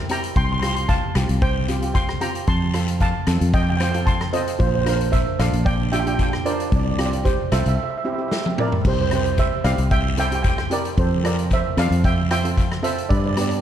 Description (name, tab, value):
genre	calypso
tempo	113 BPM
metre	4/4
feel	straight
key	unclear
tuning	A4 = 440 Hz
part	fingered electric bass	bass	0.0-13.6 s	Bb1 to G2	-22 LUFS	equal	none
part	steel pan	melody	0.1-13.6 s	F4 to C6	-24 LUFS	right 2 dB	ping-pong delay
part	steel pan	accompaniment	0.1-13.6 s	B3 to C5	-28 LUFS	right 2 dB	none
part	street-band drum kit	drums	0.1-13.6 s	crash cymbal, hi-hat, kick drum, rim click, snare drum, toms	-23 LUFS	left 1 dB	none
part	guiro	percussion	0.4-13.5 s	none	-38 LUFS	left 6 dB	none
room	light reverb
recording	dark, warm production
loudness	-18 LUFS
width	side -10 dB against mid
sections	0.0-8.8 A section; 8.8-13.6 A section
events	break 7.8-8.8; drum fill 8.3-8.8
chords	0.4 Csus4; 2.5 F; 4.6 Bbadd9; 6.7 Csus4; 7.8 C; 11.0 Fmaj7; 13.1 G